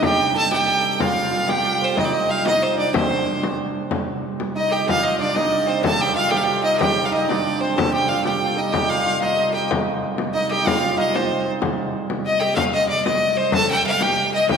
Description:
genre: medieval dance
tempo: 124 BPM (dotted quarters)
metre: 6/8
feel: straight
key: C dorian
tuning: A4 = 444 Hz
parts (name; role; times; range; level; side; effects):
- bright fiddle; melody; 0.0-14.6 s; C5 to A5; -21 LUFS; right 1 dB; none
- hammered dulcimer; second line; 0.0-14.6 s; C4 to A4; -25 LUFS; right 4 dB; none
- warm viola da gamba; second line; 0.0-14.6 s; F4 to F5; -27 LUFS; left 4 dB; none
- chamber organ, stopped flute; drone; 0.0-14.6 s; C3 to G3; -30 LUFS; right 4 dB; none
- frame drum; percussion; 0.0-14.6 s; none; -25 LUFS; left 3 dB; none
room: wet church reverb, RT60 2.6 s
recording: recorded in a church or concert hall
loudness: -18 LUFS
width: side -6 dB against mid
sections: 0.0-3.9 A section; 3.9-11.6 B section; 11.6-14.6 B section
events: none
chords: none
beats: | 0.02 0.51 | 0.99 1.48 | 1.97 2.45 | 2.94 3.42 | 3.91 4.39 | 4.88 5.36 | 5.84 6.33 | 6.81 7.29 | 7.78 8.26 | 8.74 9.22 | 9.70 10.18 | 10.66 11.14 | 11.62 12.10 | 12.58 13.06 | 13.54 14.01 | 14.49

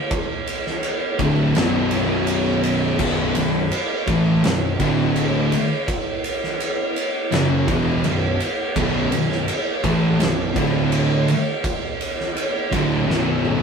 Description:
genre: stoner and doom metal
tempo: 83 BPM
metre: 4/4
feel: straight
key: B minor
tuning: A4 = 440 Hz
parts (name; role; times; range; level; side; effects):
- oversized low-tuned drum kit; drums; 0.1-13.6 s; crash cymbal, kick drum, ride cymbal, snare drum, toms; -22 LUFS; right 1 dB; none
- thick fuzz guitar; riff; 1.2-13.6 s; B1 to A3; -22 LUFS; left 5 dB; distortion
- thick fuzz guitar; riff; 1.2-13.6 s; B1 to A3; -24 LUFS; right 6 dB; distortion
- thick fuzz guitar; riff; 1.2-13.6 s; B1 to A3; -27 LUFS; equal; distortion
- fuzz picked electric bass; bass; 1.2-13.6 s; B0 to A1; -26 LUFS; equal; overdrive
room: moderate studio reverb, RT60 0.7 s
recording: rough rehearsal-room recording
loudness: -18 LUFS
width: side -6 dB against mid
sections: 0.0-13.6 A section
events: drum fill 13.1-13.6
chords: 0.0 N.C.; 1.2 Bm; 4.8 D5; 7.3 B5; 10.6 D5; 12.7 Bm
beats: | 0.11 0.83 1.56 2.28 | 3.00 3.72 4.44 5.16 | 5.88 6.60 7.32 8.04 | 8.77 9.48 10.21 10.93 | 11.65 12.37 13.09

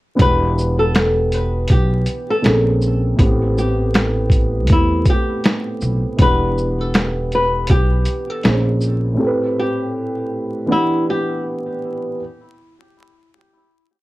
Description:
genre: lo-fi hip hop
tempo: 80 BPM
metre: 4/4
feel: swing 57% on 16ths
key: E minor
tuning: A4 = 440 Hz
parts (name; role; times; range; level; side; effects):
- dark upright piano; accompaniment; 0.1-12.2 s; A2 to F#5; -21 LUFS; right 1 dB; low-pass filter
- flamenco guitar; melody; 0.2-11.4 s; E4 to B4; -21 LUFS; left 1 dB; low-pass filter
- upright bass; bass; 0.2-9.2 s; E1 to E2; -19 LUFS; equal; none
- boom bap sampler-style drum kit; drums; 0.2-9.0 s; finger snaps, hi-hat, kick drum, shaker, snare drum; -16 LUFS; equal; none
room: light reverb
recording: worn, warbling old tape, cassette tape, vinyl crackle, warbly pitch drift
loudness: -15 LUFS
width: side -18 dB against mid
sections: 0.2-12.2 A section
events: none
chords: 0.2 Em9; 2.4 A#m9; 3.2 Am9; 6.2 Em9; 8.4 A#m9; 9.2 Am9; 10.7 Em9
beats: | 0.19 0.94 1.69 2.44 | 3.19 3.94 4.69 5.44 | 6.19 6.94 7.69 8.44 | 9.19 9.94 10.69 11.44

